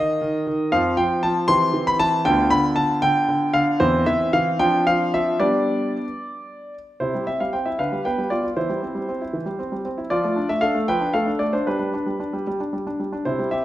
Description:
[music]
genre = classical-period piano sonatina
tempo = 77 BPM (dotted quarters)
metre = 6/8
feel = straight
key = C major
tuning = A4 = 439 Hz
[part]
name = clear concert grand piano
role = solo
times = 0.0-13.6 s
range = D2 to C6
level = -19 LUFS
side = equal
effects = none
[sound]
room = wet recital hall reverb, RT60 1.7 s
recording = none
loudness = -19 LUFS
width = side -14 dB against mid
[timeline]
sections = 0.0-7.0 A section; 7.0-13.6 B section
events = none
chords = 0.0 Eb; 0.7 F5; 1.5 C/E; 2.3 G7/D; 3.8 C/E; 4.6 Dm7/F; 5.4 G; 7.0 C; 7.8 G7/D; 8.6 C/E; 10.1 Dm/F; 11.7 G

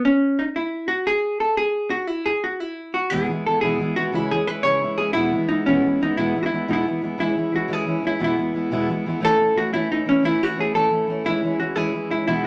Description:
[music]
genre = celtic folk, Celtic jig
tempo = 118 BPM (dotted quarters)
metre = 6/8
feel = straight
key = unclear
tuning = A4 = 440 Hz
[part]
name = vintage hollow-body jazz guitar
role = melody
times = 0.0-12.4 s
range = C#4 to C#5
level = -23 LUFS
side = equal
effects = none
[part]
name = fingerpicked steel-string acoustic guitar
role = accompaniment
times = 3.1-12.5 s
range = E2 to E4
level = -27 LUFS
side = equal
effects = none
[sound]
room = wet small room ambience, RT60 0.5 s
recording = none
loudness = -22 LUFS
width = mono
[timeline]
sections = 0.0-7.2 A section; 7.2-12.5 B section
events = none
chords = 0.0 N.C.; 3.1 E; 4.1 C#m; 5.2 E; 7.2 C#m/E; 8.2 E; 9.2 A/E; 11.2 C#m/E

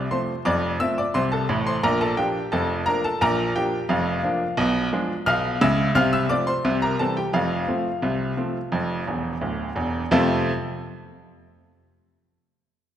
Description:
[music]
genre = ragtime piano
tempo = 87 BPM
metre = 2/4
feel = straight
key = F major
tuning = A4 = 440 Hz
[part]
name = bright baby grand piano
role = solo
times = 0.0-10.5 s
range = D1 to F6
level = -21 LUFS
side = equal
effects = none
[sound]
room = wet concert hall reverb, RT60 1.9 s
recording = recorded in a church or concert hall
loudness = -20 LUFS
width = side -10 dB against mid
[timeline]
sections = 0.0-10.1 A section; 10.1-11.5 B section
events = grand piano fill 9.1-10.1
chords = 0.0 F; 1.8 Bb; 4.6 Bdim7; 6.0 F/C; 6.6 C; 7.3 F

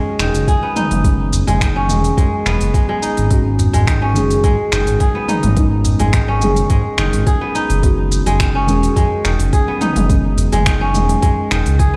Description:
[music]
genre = organic downtempo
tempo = 106 BPM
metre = 4/4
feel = straight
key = unclear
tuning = A4 = 440 Hz
[part]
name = muted felt-like synth keys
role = accompaniment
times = 0.0-12.0 s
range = D#3 to G#4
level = -23 LUFS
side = equal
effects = chorus, vintage 12-bit sampler grit, sidechain pumping, low-pass filter, digital delay
[part]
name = kora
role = arpeggios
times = 0.0-12.0 s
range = D#3 to G#4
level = -22 LUFS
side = equal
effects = digital delay
[part]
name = smooth gliding synth bass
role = bass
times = 0.2-12.0 s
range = E1 to G#2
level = -20 LUFS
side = equal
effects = sidechain pumping
[part]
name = organic electronic drum kit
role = drums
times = 0.2-11.9 s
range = finger snaps, hi-hat, shaker, toms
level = -25 LUFS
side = equal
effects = none
[part]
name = electronic kick drum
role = drums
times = 0.5-11.9 s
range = none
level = -18 LUFS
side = equal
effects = none
[part]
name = udu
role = percussion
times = 1.3-10.6 s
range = none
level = -23 LUFS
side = equal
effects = none
[sound]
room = light reverb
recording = played on a big sound system in a bare room, large studio reverb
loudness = -15 LUFS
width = mono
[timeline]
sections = 0.0-12.0 A section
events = none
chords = 0.0 F#sus2; 3.3 G#m7; 7.8 F#sus2

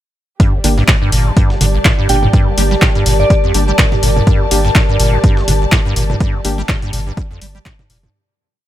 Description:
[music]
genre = acid house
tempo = 124 BPM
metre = 4/4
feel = swing 56% on 16ths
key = unclear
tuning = A4 = 441 Hz
[part]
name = warbly tape-like pad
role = sustained chords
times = 0.4-8.1 s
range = G3 to D5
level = -23 LUFS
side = right 1 dB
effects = chorus, built-in reverb, sidechain pumping
[part]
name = acid bass, square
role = riff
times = 0.4-8.1 s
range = G1 to G3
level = -18 LUFS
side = equal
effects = tube saturation, ensemble chorus, sidechain pumping
[part]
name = dusty soul sampler-style drum kit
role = drums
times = 0.4-8.0 s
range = hi-hat, snare drum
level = -27 LUFS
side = equal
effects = none
[part]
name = electronic kick drum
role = drums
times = 0.4-7.8 s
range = none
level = -13 LUFS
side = equal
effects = overdrive
[part]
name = muted studio string section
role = texture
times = 0.4-8.1 s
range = G4 to A5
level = -23 LUFS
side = left 2 dB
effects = sidechain pumping
[part]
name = deep mellow chord stab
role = stabs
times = 0.6-6.5 s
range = Bb3 to G4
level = -24 LUFS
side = left 2 dB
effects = chorus, dub echo
[part]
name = saturated sub bass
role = bass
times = 0.6-8.1 s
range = F1 to G1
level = -15 LUFS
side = equal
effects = sidechain pumping
[part]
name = punchy analog drum machine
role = drums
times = 0.6-8.1 s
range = handclaps, hi-hat, toms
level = -18 LUFS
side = equal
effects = overdrive
[part]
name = soft synth bell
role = melody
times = 2.1-3.4 s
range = D5 to G5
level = -22 LUFS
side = equal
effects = chorus, phaser, dub echo
[sound]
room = little or no reverb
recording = none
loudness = -10 LUFS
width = side -13 dB against mid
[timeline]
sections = 0.4-8.1 groove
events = fade-out 5.6-8.1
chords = 0.4 Gm

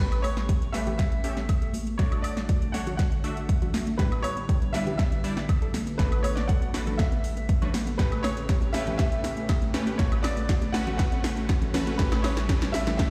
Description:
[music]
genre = progressive house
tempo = 120 BPM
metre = 4/4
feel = straight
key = A mixolydian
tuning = A4 = 440 Hz
[part]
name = warm grand piano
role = melody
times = 0.0-13.1 s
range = B4 to F#5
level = -38 LUFS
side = equal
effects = sidechain pumping, digital delay
[part]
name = soft round pluck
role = second line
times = 0.0-13.1 s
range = B4 to F#5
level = -46 LUFS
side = equal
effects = none
[part]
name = lush unison pad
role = sustained chords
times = 0.0-13.1 s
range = C#3 to G4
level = -40 LUFS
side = equal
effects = chorus, sidechain pumping
[part]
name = unison pluck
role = arpeggios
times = 0.0-13.1 s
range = A3 to C#5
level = -40 LUFS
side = equal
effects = sidechain pumping, digital delay
[part]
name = supersaw stab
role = stabs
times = 0.0-13.1 s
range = C#3 to E5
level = -37 LUFS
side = equal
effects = sidechain pumping, low-pass filter, digital delay
[part]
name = plucky analog bass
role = bass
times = 0.0-13.1 s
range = A1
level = -36 LUFS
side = equal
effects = sidechain pumping
[part]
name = riser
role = sound effects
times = 0.0-13.1 s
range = none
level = -46 LUFS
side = equal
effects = none
[part]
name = deep house drum kit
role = drums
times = 0.1-13.1 s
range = hi-hat, snare drum, woodblock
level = -36 LUFS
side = equal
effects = overdrive, studio reverb
[part]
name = electronic kick drum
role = drums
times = 0.5-13.1 s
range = none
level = -27 LUFS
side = equal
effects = overdrive, studio reverb
[part]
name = congas and bongos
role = percussion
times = 0.9-13.0 s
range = none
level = -39 LUFS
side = equal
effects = sidechain pumping on perc
[sound]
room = light reverb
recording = played on a big sound system in a bare room, stone room reverb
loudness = -26 LUFS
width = mono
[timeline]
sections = 0.0-13.1 A section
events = build-up 0.0-13.1; drum fill 0.0-13.1; filter sweep on synth pluck 0.0-13.1; filter sweep on analog synth pad 0.0-13.1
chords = 0.0 A9; 2.0 Dmaj7/A; 4.0 Em7/A; 6.0 Bm7/A; 8.0 A9; 10.0 Dmaj7/A; 12.0 Em/A

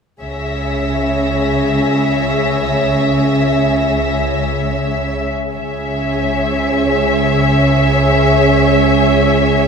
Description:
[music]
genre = cinematic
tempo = free time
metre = none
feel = none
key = C# dorian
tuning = A4 = 440 Hz
[part]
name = rich studio violin section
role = melody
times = 0.2-9.7 s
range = E5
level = -18 LUFS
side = left 3 dB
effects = none
[part]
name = warm studio violin section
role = second line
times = 0.2-9.7 s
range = G#4 to C#5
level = -18 LUFS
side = equal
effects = none
[part]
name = dark studio double bass section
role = bass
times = 0.2-9.7 s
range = C#2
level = -20 LUFS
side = right 3 dB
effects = none
[part]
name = rich studio cello section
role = bass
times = 0.2-9.7 s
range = C#3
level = -18 LUFS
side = right 1 dB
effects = none
[part]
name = rich studio violin section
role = texture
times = 0.2-5.2 s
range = E6 to A#6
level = -31 LUFS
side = left 2 dB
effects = none
[sound]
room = wet cathedral reverb, RT60 5.4 s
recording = none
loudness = -12 LUFS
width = side -6 dB against mid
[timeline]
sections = 0.2-5.6 A section; 5.6-9.7 B section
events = none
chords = 0.2 C#m

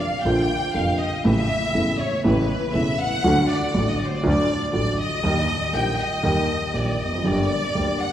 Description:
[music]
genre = tango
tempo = 120 BPM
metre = 4/4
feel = rubato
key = unclear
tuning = A4 = 440 Hz
[part]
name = warm studio violin section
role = second line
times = 0.0-8.1 s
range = B4 to G5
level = -24 LUFS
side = left 1 dB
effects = none
[part]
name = dark upright piano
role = accompaniment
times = 0.2-8.0 s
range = E1 to G4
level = -22 LUFS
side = right 1 dB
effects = none
[part]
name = clear double bass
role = bass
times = 0.2-8.0 s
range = E1 to Eb2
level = -28 LUFS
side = equal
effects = none
[sound]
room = wet church reverb, RT60 3.5 s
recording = recorded in a church or concert hall, vinyl crackle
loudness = -19 LUFS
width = side -11 dB against mid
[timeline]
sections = 0.0-8.1 A section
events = violin section solo 0.0-8.1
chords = 0.0 Bb; 1.2 A; 3.2 D; 5.2 Eb; 7.3 Gm

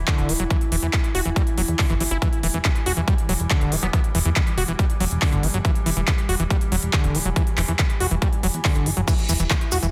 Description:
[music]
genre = psychedelic trance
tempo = 140 BPM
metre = 4/4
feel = straight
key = E minor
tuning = A4 = 441 Hz
[part]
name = evolving wavetable pad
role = sustained chords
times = 0.0-9.9 s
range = E3 to E4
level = -34 LUFS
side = equal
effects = chorus, built-in reverb, sidechain pumping
[part]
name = plucky analog bass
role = bass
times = 0.0-9.9 s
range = D1 to E2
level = -26 LUFS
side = equal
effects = none
[part]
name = overdriven acid bass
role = riff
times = 0.1-9.9 s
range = D3 to F#4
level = -29 LUFS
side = equal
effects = distortion, sidechain pumping, dub echo
[part]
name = big-room dance drum kit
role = drums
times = 0.1-9.9 s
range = crash cymbal, handclaps, hi-hat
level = -29 LUFS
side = equal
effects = none
[part]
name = electronic kick drum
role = drums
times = 0.1-9.6 s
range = none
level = -24 LUFS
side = equal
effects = none
[part]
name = metallic wobble bass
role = second line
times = 3.8-4.0 s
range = B3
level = -38 LUFS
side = equal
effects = none
[part]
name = cabasa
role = percussion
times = 9.1-9.9 s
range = none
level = -32 LUFS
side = equal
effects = none
[sound]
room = light reverb, digital ambience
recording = dense, heavily limited modern master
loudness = -21 LUFS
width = mono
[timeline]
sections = 0.0-9.9 A section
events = none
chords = 0.0 E5

